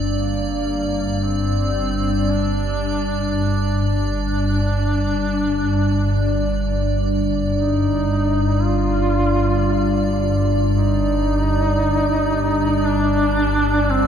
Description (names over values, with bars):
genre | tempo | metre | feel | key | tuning
ambient | free time | none | none | unclear | A4 = 439 Hz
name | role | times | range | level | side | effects
dark analog pad | sustained chords | 0.0-14.1 s | G3 to D5 | -21 LUFS | equal | chorus, shimmer reverb
deep rumbling drone | drone | 0.0-14.1 s | G1 to G2 | -21 LUFS | equal | built-in reverb, phaser
icy glass pad | texture | 0.0-14.1 s | D5 | -31 LUFS | right 2 dB | chorus, built-in reverb, shimmer reverb
warm duduk | melody | 0.2-14.1 s | Bb3 to F4 | -24 LUFS | right 1 dB | shimmer reverb, ping-pong delay
room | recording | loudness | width
wet cathedral reverb, RT60 4.9 s | in a vast, echoing space | -17 LUFS | side -8 dB against mid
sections
0.0-14.1 A section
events
fade-in on duduk 0.0-14.1; fade-out on ambient pad 0.0-14.1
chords
0.0 G5